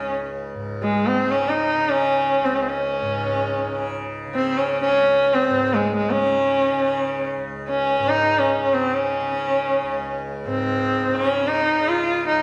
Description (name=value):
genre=indian classical, Hindustani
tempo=free time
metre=none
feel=none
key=unclear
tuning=A4 = 439 Hz
part: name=rich sarangi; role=melody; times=0.0-12.4 s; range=Ab3 to F4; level=-22 LUFS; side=equal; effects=none
part: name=tanpura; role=drone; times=0.0-12.4 s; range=Db2 to Db3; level=-32 LUFS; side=equal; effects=none
room=wet recital hall reverb, RT60 1.4 s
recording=recorded in a church or concert hall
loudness=-21 LUFS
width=mono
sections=0.0-12.4 A section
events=none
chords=none